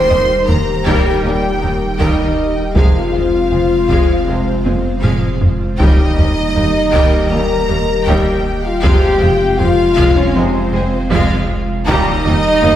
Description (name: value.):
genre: cinematic, hybrid orchestral and electronic film score.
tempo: 79 BPM.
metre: 4/4.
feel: straight.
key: F minor.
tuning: A4 = 437 Hz.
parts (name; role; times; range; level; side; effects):
clear symphonic violin section; melody; 0.0-12.7 s; Ab4 to Bb5; -27 LUFS; left 3 dB; none.
clear symphonic violin section; second line; 0.0-12.8 s; C5 to C6; -23 LUFS; left 1 dB; none.
clear symphonic viola section; accompaniment; 0.0-12.7 s; G3 to Bb4; -24 LUFS; equal; none.
airy breathy pad; sustained chords; 0.0-12.8 s; G3 to F5; -22 LUFS; equal; chorus.
dark French horn section; sustained chords; 0.0-12.8 s; C4 to C5; -16 LUFS; left 2 dB; none.
punchy sub bass; bass; 0.0-12.8 s; Eb1 to F1; -23 LUFS; equal; none.
tight sequenced synth; arpeggios; 0.1-12.8 s; Eb3 to F4; -27 LUFS; left 1 dB; none.
clear symphonic double bass section; bass; 0.1-12.7 s; F1 to Eb2; -23 LUFS; right 1 dB; none.
rich studio cello section; bass; 0.1-12.7 s; Eb2 to F2; -23 LUFS; right 2 dB; none.
taiko ensemble; drums; 0.1-12.8 s; none; -17 LUFS; equal; none.
clear trombone section; sustained chords; 1.2-12.1 s; Bb2 to Ab3; -26 LUFS; right 2 dB; none.
room: wet scoring stage reverb, RT60 1.7 s.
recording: heard from further back in the room.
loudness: -12 LUFS.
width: side -11 dB against mid.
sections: 0.0-12.8 A section.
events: drum fill 4.7-5.8.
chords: 0.0 Eb; 2.8 Fm; 5.8 Eb; 8.8 Fm; 11.9 Eb.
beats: 0.48 1.24 2.00 | 2.76 3.52 4.28 5.04 | 5.80 6.56 7.32 8.07 | 8.84 9.59 10.35 11.11 | 11.87 12.63.